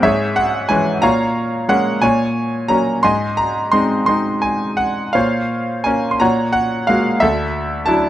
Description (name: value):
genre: classical, lyrical solo piano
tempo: 58 BPM (dotted quarters)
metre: 6/8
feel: uneven beats, rubato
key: Gb lydian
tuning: A4 = 440 Hz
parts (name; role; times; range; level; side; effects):
- bright concert grand piano; solo; 0.0-8.1 s; D2 to C6; -14 LUFS; equal; none
room: light reverb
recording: close, detailed microphones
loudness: -15 LUFS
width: side -12 dB against mid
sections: 0.0-8.1 A section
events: none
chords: 0.0 Dbm/Ab; 1.0 Bbm7; 2.0 Gb/Bb; 3.0 Ab; 5.2 Bbmadd9; 6.2 Gbadd9/Bb; 7.2 Dadd9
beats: 0.03 | 1.03 2.02 | 3.04 4.08 | 5.15 6.21 | 7.22